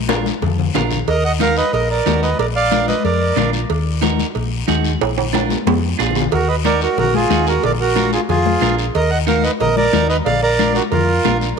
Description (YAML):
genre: latin, cumbia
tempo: 183 BPM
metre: 4/4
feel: straight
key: Eb harmonic minor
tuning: A4 = 442 Hz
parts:
  - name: hollow-body short-scale fingered electric bass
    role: bass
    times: 0.0-11.5 s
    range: Bb1 to F2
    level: -20 LUFS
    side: left 1 dB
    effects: none
  - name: clean electric guitar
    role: accompaniment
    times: 0.1-11.5 s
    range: D4 to Bb4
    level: -24 LUFS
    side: right 10 dB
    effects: none
  - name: congas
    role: percussion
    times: 0.1-11.4 s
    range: none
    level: -22 LUFS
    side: left 14 dB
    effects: none
  - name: cowbell and timbales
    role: percussion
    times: 0.1-11.4 s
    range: none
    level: -24 LUFS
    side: right 10 dB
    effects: none
  - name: guiro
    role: percussion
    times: 0.1-11.6 s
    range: none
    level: -29 LUFS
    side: left 15 dB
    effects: none
  - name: accordion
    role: melody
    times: 1.1-3.5, 6.3-11.4 s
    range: F4 to Gb5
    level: -17 LUFS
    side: right 3 dB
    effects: none
room: moderate echo chamber reverb, RT60 2.1 s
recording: 1960s-style stereo with parts hard left and right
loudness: -14 LUFS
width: side -6 dB against mid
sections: 0.0-6.3 A section; 6.3-11.6 A section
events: drum fill 0.0-1.1, 5.0-6.3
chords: 0.0 Bb; 1.1 Ebm; 2.4 Bb; 3.7 Ebm; 5.0 Bb7; 6.3 Ebm; 7.6 Bb7; 8.9 Ebm; 10.3 Bb